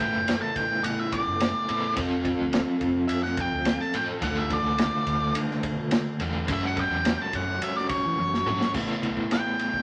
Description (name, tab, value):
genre	psychedelic rock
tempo	106 BPM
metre	4/4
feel	straight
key	A mixolydian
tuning	A4 = 444 Hz
part	octave-fuzz lead guitar	melody	0.0-9.8 s	C#5 to A5	-30 LUFS	equal	distortion
part	ensemble organ-string	sustained chords	0.0-9.8 s	F#3 to A4	-40 LUFS	equal	ensemble chorus
part	crunchy overdriven guitar	riff	0.0-9.8 s	D3 to A4	-31 LUFS	equal	tremolo
part	fretless electric bass	bass	0.0-9.8 s	F1 to F#3	-37 LUFS	equal	none
part	vintage drum kit	drums	0.3-9.8 s	crash cymbal, kick drum, ride cymbal, snare drum, toms	-32 LUFS	equal	none
room	moderate studio reverb, RT60 0.5 s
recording	none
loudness	-26 LUFS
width	mono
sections	0.0-8.7 A section; 8.7-9.8 B section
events	lead electric guitar solo 0.0-8.7; drum fill 8.2-8.7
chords	0.0 Asus2; 2.0 F; 4.2 Dm; 6.5 F#m; 8.7 Asus2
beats	0.27 0.84 1.40 | 1.97 2.53 3.10 3.67 | 4.23 4.79 5.36 5.92 | 6.49 7.05 7.62 8.18 | 8.75 9.31